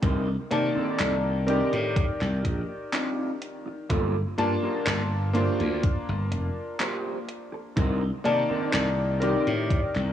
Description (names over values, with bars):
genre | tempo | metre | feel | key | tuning
vaporwave | 62 BPM | 4/4 | straight | unclear | A4 = 440 Hz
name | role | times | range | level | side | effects
mellow electric guitar | riff | 0.0-9.7 s | Bb3 to C5 | -31 LUFS | right 2 dB | wide subtle chorus, analog delay
glassy slap bass | bass | 0.0-10.1 s | F1 to C3 | -27 LUFS | equal | none
electronic kick drum | drums | 0.0-9.9 s | none | -25 LUFS | equal | vintage 12-bit sampler grit
gated 80s digital drum machine | drums | 0.0-10.1 s | handclaps, hi-hat | -31 LUFS | equal | gated reverb, vintage 12-bit sampler grit
clear electric grand piano | accompaniment | 0.5-10.1 s | Eb3 to A5 | -27 LUFS | left 2 dB | analog chorus, analog delay
room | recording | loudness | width
moderate plate reverb, RT60 2.5 s | worn, warbling old tape, cassette tape, warbly pitch drift, small room ambience | -24 LUFS | side -10 dB against mid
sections
0.0-10.1 A section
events
none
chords
0.0 Cm9; 3.9 Gm9; 7.8 Cm9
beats
| 0.03 0.99 1.96 2.93 | 3.90 4.87 5.83 6.80 | 7.77 8.74 9.71